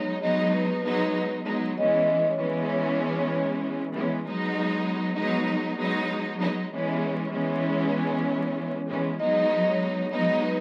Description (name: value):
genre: hip hop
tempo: 97 BPM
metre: 4/4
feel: swing 62% on 16ths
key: G# minor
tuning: A4 = 440 Hz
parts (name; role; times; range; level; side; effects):
- vibraphone with soft mallets; melody; 0.0-3.6, 9.2-10.6 s; B4 to D#5; -28 LUFS; equal; high-pass filter, low-pass filter
- warm studio string section; accompaniment; 0.0-10.6 s; E3 to D#4; -28 LUFS; equal; cassette tape, high-pass filter, low-pass filter
room: moderate small room reverb, RT60 0.5 s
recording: vinyl crackle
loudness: -26 LUFS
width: mono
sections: 0.0-10.6 A section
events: none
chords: 0.0 G#m7; 1.8 C#m7; 4.2 G#m7; 6.7 C#m7; 9.2 G#m7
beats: 0.53 1.15 | 1.77 2.39 3.01 3.62 | 4.24 4.86 5.48 6.10 | 6.72 7.34 7.95 8.57 | 9.19 9.81 10.43